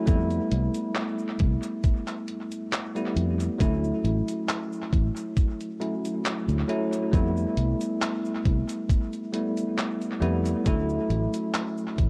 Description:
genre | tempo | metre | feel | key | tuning
vaporwave | 68 BPM | 4/4 | swing 53% on 16ths | unclear | A4 = 435 Hz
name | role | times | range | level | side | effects
bell-like tine electric piano | accompaniment | 0.0-12.1 s | F#3 to E4 | -30 LUFS | equal | subtle chorus, analog delay
fingered electric bass | bass | 0.1-12.1 s | A1 to F2 | -28 LUFS | equal | none
detuned 8-bit digital drum machine | drums | 0.1-12.1 s | cabasa, handclaps, hi-hat | -36 LUFS | equal | analog delay
electronic kick drum | drums | 0.1-12.1 s | none | -26 LUFS | equal | none
room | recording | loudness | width
digital ambience | echo-heavy mix, cassette tape, lossy compression artefacts | -27 LUFS | mono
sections
0.0-12.1 A section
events
none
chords
0.1 Fmaj9#11; 3.6 Dmaj9; 7.1 Fmaj9#11; 10.7 Dmaj9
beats
| 0.07 0.95 1.84 2.72 | 3.60 4.48 5.37 6.25 | 7.13 8.01 8.89 9.78 | 10.66 11.54

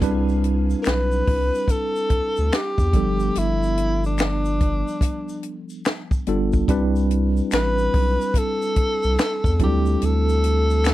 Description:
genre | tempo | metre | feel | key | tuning
R&B, neo-soul | 72 BPM | 4/4 | swing 64% on 16ths | unclear | A4 = 442 Hz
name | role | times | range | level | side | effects
tine electric piano | accompaniment | 0.0-10.9 s | F3 to B4 | -25 LUFS | right 1 dB | medium stereo tremolo
round analog bass | bass | 0.0-10.9 s | G1 to E2 | -22 LUFS | equal | none
compact cocktail drum kit | drums | 0.0-10.9 s | finger snaps, hi-hat, kick drum, snare drum | -22 LUFS | equal | none
egg shaker and finger snaps | percussion | 0.0-10.9 s | none | -40 LUFS | left 4 dB | none
breathy tenor saxophone | melody | 0.8-10.9 s | D4 to B4 | -23 LUFS | equal | none
room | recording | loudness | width
little or no reverb | dry, close 1970s-style studio recording | -18 LUFS | side -15 dB against mid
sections
0.0-10.9 A section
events
none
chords
0.0 Cmaj7; 2.9 G9; 6.7 Cmaj7; 9.6 D7sus4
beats
| 0.02 0.85 1.68 2.52 | 3.35 4.18 5.02 5.85 | 6.68 7.52 8.35 9.18 | 10.02 10.85

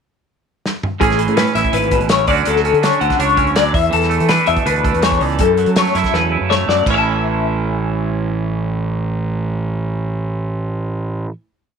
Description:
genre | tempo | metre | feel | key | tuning
math rock and midwest emo | 164 BPM | 4/4 | straight | A major | A4 = 440 Hz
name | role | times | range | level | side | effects
loose indie drum kit | drums | 0.7-7.0 s | crash cymbal, hi-hat, kick drum, snare drum, toms | -21 LUFS | right 1 dB | none
twangy electric guitar | accompaniment | 1.0-11.3 s | E2 to G#4 | -20 LUFS | right 14 dB | lush chorus
twelve-string electric guitar | arpeggios | 1.0-11.3 s | G#4 to A5 | -17 LUFS | left 11 dB | phaser
fuzz fingered electric bass | bass | 1.0-11.3 s | G#1 to F#3 | -20 LUFS | right 1 dB | overdrive
room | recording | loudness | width
small room ambience | 1960s-style stereo with parts hard left and right | -14 LUFS | side -6 dB against mid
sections
0.0-1.0 pickup bar; 1.0-6.9 A section; 6.9-9.8 final chord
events
drum fill 0.6-1.0, 6.1-6.9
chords
0.0 N.C.; 1.0 Amaj9; 2.3 Dmaj7; 3.7 E9sus4; 5.4 F#m7; 6.9 A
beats
0.28 0.64 | 1.01 1.37 1.74 2.10 | 2.46 2.83 3.20 3.56 | 3.93 4.29 4.66 5.03 | 5.39 5.76 6.13 6.50 | 6.86 7.23 7.60 7.96 | 8.33 8.70 9.06 9.43

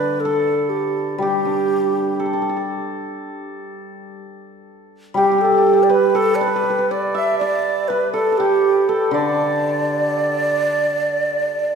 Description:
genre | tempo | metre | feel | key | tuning
chinese traditional, Chinese chamber ensemble | 61 BPM | 4/4 | rubato | D zhi mode | A4 = 440 Hz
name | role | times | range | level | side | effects
breathy xiao | melody | 0.0-11.8 s | G4 to E5 | -19 LUFS | right 1 dB | none
hammered dulcimer | second line | 0.0-11.8 s | G4 to E5 | -21 LUFS | right 3 dB | none
hammered dulcimer | accompaniment | 0.0-11.8 s | D3 to D4 | -25 LUFS | left 3 dB | none
room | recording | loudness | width
wet scoring stage reverb, RT60 1.9 s | recorded in a church or concert hall | -16 LUFS | side -6 dB against mid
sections
0.0-11.8 A section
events
none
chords
none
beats
0.22 | 1.21 2.20 3.18 4.17 | 5.16 6.15 7.13 8.12 | 9.13 10.15 11.19

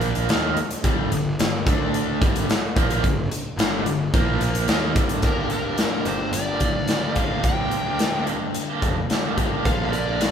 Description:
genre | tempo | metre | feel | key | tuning
classic rock | 109 BPM | 4/4 | straight | G minor | A4 = 440 Hz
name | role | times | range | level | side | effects
cranked stack guitar | riff | 0.0-10.3 s | G2 to G4 | -29 LUFS | left 7 dB | overdrive
overdriven semi-hollow guitar | riff | 0.0-10.3 s | G2 to G4 | -26 LUFS | right 5 dB | tremolo
fuzz picked electric bass | bass | 0.0-10.3 s | F1 to Eb2 | -29 LUFS | equal | overdrive
big rock drum kit | drums | 0.0-10.3 s | hi-hat, kick drum, snare drum | -23 LUFS | equal | none
smooth overdriven lead guitar | melody | 5.2-10.3 s | Bb4 to G5 | -28 LUFS | equal | none
room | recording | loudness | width
moderate large studio reverb, RT60 1.1 s | band playing live in one room | -20 LUFS | side -8 dB against mid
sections
0.0-5.2 A section; 5.2-10.3 B section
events
none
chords
0.3 Gm; 1.7 D5; 2.2 Gm; 4.1 Bb5; 4.7 Gm; 9.6 Bb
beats
0.29 | 0.84 1.40 1.95 2.49 | 3.04 3.59 4.14 4.69 | 5.24 5.79 6.33 6.88 | 7.44 7.99 8.54 9.09 | 9.65 10.20

